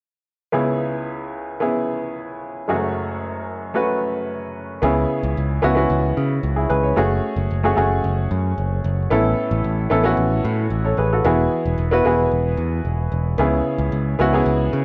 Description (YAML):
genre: piano-driven pop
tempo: 112 BPM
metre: 4/4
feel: straight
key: C# minor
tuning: A4 = 439 Hz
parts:
  - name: bright baby grand piano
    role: accompaniment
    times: 0.5-14.8 s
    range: F#1 to C#5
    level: -22 LUFS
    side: equal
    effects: none
  - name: modern bright picked electric bass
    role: bass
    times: 4.8-14.8 s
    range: E1 to C#3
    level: -23 LUFS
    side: equal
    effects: none
room: moderate large studio reverb, RT60 1.2 s, small room ambience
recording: worn, warbling old tape, cassette tape, warbly pitch drift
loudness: -20 LUFS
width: mono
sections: 0.5-4.8 A section; 4.8-14.8 B section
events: none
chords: 0.5 C#m7; 2.7 F#madd9; 4.8 C#m7; 7.0 F#madd9; 9.1 Aadd9; 11.3 Eadd9; 13.4 C#m7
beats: | 0.54 1.07 1.61 2.14 | 2.68 3.21 3.75 4.29 | 4.82 5.36 5.89 6.43 | 6.96 7.50 8.04 8.57 | 9.11 9.64 10.18 10.71 | 11.25 11.79 12.32 12.86 | 13.39 13.93 14.47